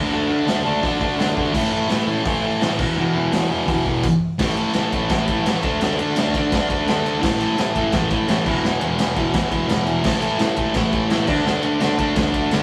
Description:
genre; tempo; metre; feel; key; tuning
garage rock duo or trio; 169 BPM; 4/4; straight; unclear; A4 = 440 Hz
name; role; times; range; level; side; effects
thick fuzz guitar; riff; 0.0-12.6 s; E2 to D4; -21 LUFS; equal; distortion
raw garage drum kit; drums; 0.5-12.6 s; crash cymbal, hi-hat, kick drum, ride cymbal, snare drum; -25 LUFS; equal; none
room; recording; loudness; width
moderate studio reverb, RT60 0.5 s; rough rehearsal-room recording, studio reverb; -20 LUFS; mono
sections
0.0-4.4 A section; 4.4-12.6 B section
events
none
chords
0.0 D5; 1.5 A5; 2.8 E5; 4.4 A5; 5.6 D5; 7.2 A5; 8.5 E5; 10.0 A5; 11.3 D5

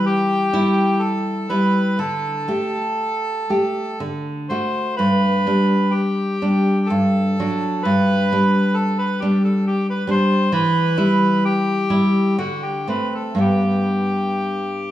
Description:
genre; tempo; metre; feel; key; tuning
romantic duo for bandoneon and classical guitar; 56-70 BPM; 3/4; rubato; G major; A4 = 440 Hz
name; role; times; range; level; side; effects
bandoneon; melody; 0.0-14.9 s; F#4 to C5; -22 LUFS; equal; none
nylon-string guitar; accompaniment; 0.0-14.9 s; G2 to G4; -18 LUFS; equal; none
room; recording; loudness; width
moderate recital hall reverb, RT60 1.8 s; small room reverb; -17 LUFS; side -13 dB against mid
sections
0.0-14.9 A section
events
none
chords
0.0 Em; 2.0 Dsus4; 4.0 D; 5.0 G; 6.9 D/G; 7.8 G; 10.5 Em; 12.4 D5; 13.4 G

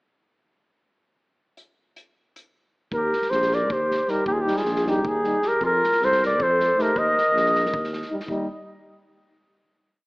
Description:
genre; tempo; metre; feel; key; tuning
balkan folk, Balkan brass band; 313 BPM (eighths); 7/8; straight; Eb major; A4 = 441 Hz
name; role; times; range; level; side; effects
unplugged drum kit; percussion; 1.6-8.5 s; hi-hat, kick drum, snare drum; -38 LUFS; equal; none
mellow flugelhorn; melody; 2.9-7.9 s; G4 to Eb5; -21 LUFS; equal; tape echo
mellow clarinet; second line; 2.9-7.9 s; Eb4 to Bb4; -29 LUFS; left 1 dB; none
mellow tuba; bass; 2.9-8.5 s; Bb1 to F2; -29 LUFS; equal; none
warm euphonium; accompaniment; 4.1-8.5 s; Eb4; -32 LUFS; left 2 dB; none
warm trombone; accompaniment; 4.1-8.5 s; G3 to A3; -33 LUFS; right 1 dB; none
room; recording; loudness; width
moderate scoring stage reverb, RT60 1.7 s; AM radio sound; -20 LUFS; side -26 dB against mid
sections
1.6-2.9 pickup bar; 2.9-8.3 A section; 8.3-9.6 final chord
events
none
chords
1.6 N.C.; 2.9 Eb; 5.6 F; 6.9 Eb5; 8.3 Eb

